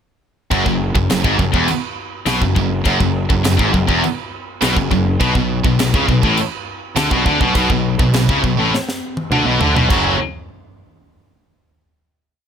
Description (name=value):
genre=heavy metal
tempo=102 BPM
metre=4/4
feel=straight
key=unclear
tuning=A4 = 440 Hz
part: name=heavy high-gain guitar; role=riff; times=0.5-10.1 s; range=E2 to F#3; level=-20 LUFS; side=right 12 dB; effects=distortion
part: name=high-gain distorted guitar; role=riff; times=0.5-10.1 s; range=E2 to C#4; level=-22 LUFS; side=left 1 dB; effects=distortion
part: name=scooped high-gain guitar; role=riff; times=0.5-10.1 s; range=E2 to F#3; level=-19 LUFS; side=left 8 dB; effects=distortion
part: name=fuzz picked electric bass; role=bass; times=0.5-10.2 s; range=E1 to D2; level=-21 LUFS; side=equal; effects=overdrive
part: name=tight metal drum kit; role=drums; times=0.5-10.0 s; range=china cymbal, crash cymbal, kick drum, snare drum, toms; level=-20 LUFS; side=equal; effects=none
room=little or no reverb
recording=none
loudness=-14 LUFS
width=side -8 dB against mid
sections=0.5-9.9 riff; 9.9-12.2 final chord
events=drum fill 8.7-9.9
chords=0.5 Eadd9; 5.2 Aadd9; 9.9 F#5